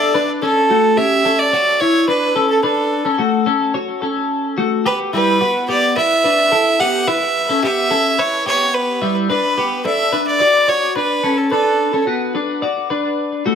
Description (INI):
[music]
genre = indie pop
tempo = 108 BPM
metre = 4/4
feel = straight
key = D major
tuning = A4 = 440 Hz
[part]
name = clear fiddle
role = melody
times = 0.0-12.0 s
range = A4 to F#5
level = -16 LUFS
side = right 2 dB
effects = none
[part]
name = twelve-string electric guitar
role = arpeggios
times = 0.0-13.6 s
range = G3 to D5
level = -17 LUFS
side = left 2 dB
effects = lush chorus, digital delay
[sound]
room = wet small room reverb, RT60 0.5 s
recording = none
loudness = -14 LUFS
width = side -7 dB against mid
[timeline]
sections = 0.4-13.6 A section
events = none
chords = 0.4 Dmaj7; 4.9 Em; 9.3 Bm